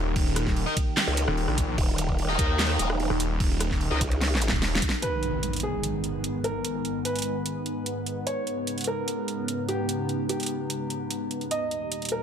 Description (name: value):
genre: heavy wobble dubstep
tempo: 148 BPM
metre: 4/4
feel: half-time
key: G# harmonic minor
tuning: A4 = 437 Hz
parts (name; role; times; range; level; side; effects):
- lush unison pad; sustained chords; 0.0-12.2 s; D#2 to G4; -33 LUFS; equal; chorus, phaser, sidechain pumping
- snarling distorted saw bass; bass; 0.0-4.8 s; D#1 to A#1; -27 LUFS; equal; distortion, overdrive
- warbly tape-like pad; texture; 0.0-12.2 s; B3 to A#5; -34 LUFS; equal; chorus, built-in reverb, sidechain pumping
- dubstep drum kit; drums; 0.2-12.2 s; crash cymbal, handclaps, hi-hat, rim click, snare drum; -30 LUFS; right 1 dB; none
- electronic kick drum; drums; 0.2-4.9 s; none; -27 LUFS; equal; none
- distorted electric guitar; stabs; 0.7-4.0 s; D#4 to D#5; -32 LUFS; left 4 dB; overdrive, digital delay
- growl bass; bass; 1.1-4.5 s; D#1 to D#2; -26 LUFS; equal; chorus, overdrive
- dark grand piano; melody; 5.0-12.2 s; G4 to D#5; -32 LUFS; right 1 dB; digital delay
- impact; sound effects; 5.0-6.6 s; none; -34 LUFS; equal; none
room: digital ambience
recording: none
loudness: -24 LUFS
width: side -8 dB against mid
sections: 0.0-5.0 A section; 5.0-12.2 B section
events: drop 0.0-5.0; drum fill 4.2-5.0; impact 5.0-6.6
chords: 0.0 D#; 5.0 G#m; 11.5 D#